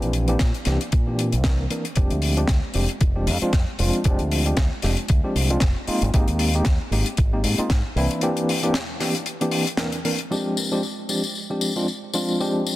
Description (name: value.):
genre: nu-disco, nu disco.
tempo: 115 BPM.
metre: 4/4.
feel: swing 56% on 16ths.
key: F dorian.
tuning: A4 = 440 Hz.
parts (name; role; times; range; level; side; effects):
tine electric piano; accompaniment; 0.0-12.8 s; E3 to Bb4; -24 LUFS; equal; medium tremolo, sidechain pumping, low-pass filter, tape echo.
fingered electric bass with an envelope filter; bass; 0.0-8.1 s; F1 to Bb2; -23 LUFS; equal; none.
tight funk drum kit; drums; 0.0-12.8 s; hi-hat, snare drum, tambourine; -27 LUFS; left 2 dB; none.
electronic kick drum; drums; 0.4-7.8 s; none; -20 LUFS; equal; overdrive.
room: light reverb, small room ambience.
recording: dense, heavily limited modern master.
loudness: -20 LUFS.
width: side -16 dB against mid.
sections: 0.0-10.3 A section; 10.3-12.8 B section.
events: break 8.2-10.3.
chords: 0.0 C9; 2.0 Fm69; 5.9 Abmaj7; 8.0 C9; 10.3 Fm69.